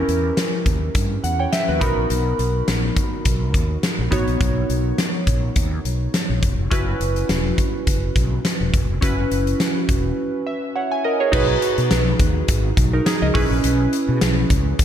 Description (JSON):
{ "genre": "1980s-style pop", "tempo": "104 BPM", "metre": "4/4", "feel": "swing 55% on 16ths", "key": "B major", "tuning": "A4 = 441 Hz", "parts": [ { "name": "glassy digital keys", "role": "accompaniment", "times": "0.0-14.8 s", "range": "B3 to B5", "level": "-22 LUFS", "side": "right 2 dB", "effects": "chorus" }, { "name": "fretless electric bass", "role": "bass", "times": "0.1-14.8 s", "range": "E1 to B2", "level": "-22 LUFS", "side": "equal", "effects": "ensemble chorus" }, { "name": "big rock drum kit", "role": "drums", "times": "0.1-14.8 s", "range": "crash cymbal, hi-hat, kick drum, snare drum", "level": "-21 LUFS", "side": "equal", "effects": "none" } ], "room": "light reverb, small room ambience", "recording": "none", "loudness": "-17 LUFS", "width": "side -10 dB against mid", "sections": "0.0-11.3 A section; 11.3-14.8 B section", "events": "synth keys fill 0.9-2.1, 10.2-11.3", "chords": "0.0 Em6; 1.8 Bmaj7; 6.7 F#7sus4; 11.3 G#m7/B; 13.3 C#m7" }